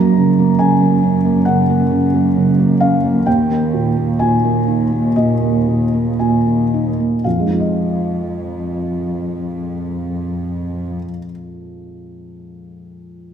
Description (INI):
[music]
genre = cinematic, emotional film score for orchestra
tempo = 56-70 BPM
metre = 4/4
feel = rubato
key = F minor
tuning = A4 = 440 Hz
[part]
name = felt-muted upright piano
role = accompaniment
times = 0.0-13.3 s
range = Eb2 to Bb5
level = -16 LUFS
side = right 1 dB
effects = none
[part]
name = dark studio cello section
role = bass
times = 0.0-11.0 s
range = Eb2 to Gb2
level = -19 LUFS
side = right 2 dB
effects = none
[sound]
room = wet scoring stage reverb, RT60 1.7 s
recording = minimal, uncompressed stereo recording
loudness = -14 LUFS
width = side -8 dB against mid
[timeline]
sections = 0.0-7.2 A section; 7.2-11.3 B section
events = slowing down 0.0-7.2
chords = 0.0 Gb; 3.3 Ebsus4; 7.2 Fm7